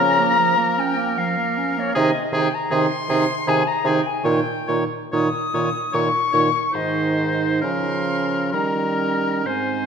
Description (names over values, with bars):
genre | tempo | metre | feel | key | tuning
classical, slow romantic movement for wind quintet | 63-80 BPM | 3/4 | rubato | Ab major | A4 = 440 Hz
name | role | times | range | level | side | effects
silver concert flute | melody | 0.0-9.9 s | Db5 to Eb6 | -23 LUFS | left 5 dB | none
clear oboe | second line | 0.0-9.9 s | Ab4 to Db5 | -25 LUFS | left 1 dB | none
mellow clarinet | accompaniment | 0.0-9.9 s | F3 to Eb4 | -25 LUFS | right 7 dB | none
warm French horn | accompaniment | 0.0-9.9 s | Eb3 to Ab3 | -28 LUFS | equal | none
warm bassoon | bass | 0.0-9.9 s | Ab2 to Eb3 | -24 LUFS | right 2 dB | none
room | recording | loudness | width
wet scoring stage reverb, RT60 1.7 s | minimal, uncompressed stereo recording | -18 LUFS | side -6 dB against mid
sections
0.0-9.9 A section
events
none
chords
0.0 Bbm/Db; 2.0 Ab/C; 4.2 Eb5/Bb; 6.7 Ab; 7.6 Bbm/Db; 8.5 Eb7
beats
0.39 1.18 | 1.96 2.71 3.47 | 4.25 5.13 5.93 | 6.74 7.63 8.53 | 9.45